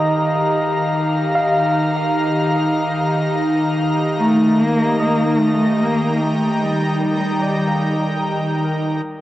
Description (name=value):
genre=ambient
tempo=74 BPM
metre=3/4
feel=straight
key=Eb lydian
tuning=A4 = 440 Hz
part: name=airy breathy pad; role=sustained chords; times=0.0-9.2 s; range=Eb3 to Bb5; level=-18 LUFS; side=equal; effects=chorus
part: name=barky tine electric piano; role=arpeggios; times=0.0-9.2 s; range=Bb4 to F5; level=-25 LUFS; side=equal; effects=overdrive, tape echo
part: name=dark cello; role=melody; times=4.2-8.2 s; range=G3 to Bb3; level=-19 LUFS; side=equal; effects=cassette tape, tape echo
room=wet spring reverb, RT60 2.9 s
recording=home recording on cassette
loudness=-16 LUFS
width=side -14 dB against mid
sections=0.0-9.1 A section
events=fade-out on tine electric piano 0.0-9.1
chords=0.0 Ebadd9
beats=0.13 0.94 | 1.75 2.57 3.38 | 4.19 5.00 5.81 | 6.62 7.43 8.24 | 9.05